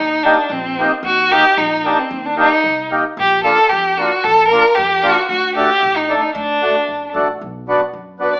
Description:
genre	klezmer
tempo	113 BPM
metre	2/4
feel	straight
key	D phrygian dominant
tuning	A4 = 440 Hz
part	rich violin	melody	0.0-8.4 s	C4 to D5	-13 LUFS	equal	none
part	upright bass	bass	0.0-8.3 s	F#1 to F#2	-33 LUFS	equal	none
part	mellow accordion	accompaniment	0.2-8.3 s	A3 to A4	-16 LUFS	equal	none
room	wet large studio reverb, RT60 0.8 s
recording	band playing live in one room, AM radio sound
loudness	-12 LUFS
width	side -28 dB against mid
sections	0.0-7.4 A section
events	none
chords	0.0 Eb; 3.2 Bb; 5.3 D; 7.4 Bm

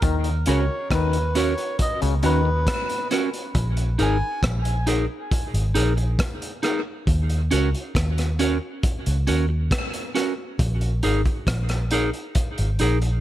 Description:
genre	dub reggae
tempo	68 BPM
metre	4/4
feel	straight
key	Eb minor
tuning	A4 = 440 Hz
part	auto-wah clav	riff	0.0-2.5 s	Db3 to Eb3	-30 LUFS	left 10 dB	overdrive, dub echo
part	vintage muted fingered electric bass	bass	0.0-13.2 s	Ab1 to Eb2	-22 LUFS	equal	none
part	crunchy breakbeat drum kit	drums	0.0-13.2 s	hi-hat, kick drum, rim click	-26 LUFS	equal	none
part	melodica	melody	0.5-4.4 s	Cb5 to Ab5	-28 LUFS	equal	dub echo
part	semi-hollow electric guitar	accompaniment	0.5-13.1 s	Db4 to Bb4	-26 LUFS	right 2 dB	dub echo
room	light reverb, small room ambience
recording	none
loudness	-20 LUFS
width	side -13 dB against mid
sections	0.0-13.2 A section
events	none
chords	0.0 Ebm7; 3.5 Bb7sus4; 7.1 Ebm7; 10.6 Bb7sus4

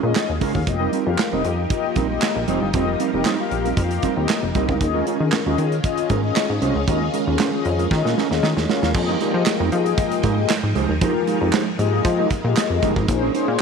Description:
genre	early-eighties boogie funk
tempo	116 BPM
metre	4/4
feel	straight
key	F minor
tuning	A4 = 444 Hz
part	mellow synth brass	accompaniment	0.0-13.6 s	Bb3 to F5	-23 LUFS	left 13 dB	chorus
part	string machine, full ensemble	sustained chords	0.0-13.6 s	Eb3 to G5	-29 LUFS	equal	phaser, ensemble chorus
part	mellow electric guitar	riff	0.0-13.5 s	G3 to C5	-25 LUFS	right 12 dB	wide subtle chorus
part	plucky analog bass	bass	0.0-13.6 s	F1 to F3	-22 LUFS	equal	none
part	modern studio drum kit	drums	0.2-13.6 s	crash cymbal, handclaps, hi-hat, kick drum, snare drum	-24 LUFS	right 4 dB	none
room	light reverb, small room ambience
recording	1960s-style stereo with parts hard left and right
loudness	-18 LUFS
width	side -5 dB against mid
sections	0.0-8.9 A section; 8.9-13.6 B section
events	drum fill 7.9-8.9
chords	0.0 Eb9sus4; 0.7 F9sus4; 4.8 Eb9sus4; 8.9 Fm11; 13.1 Bbm11

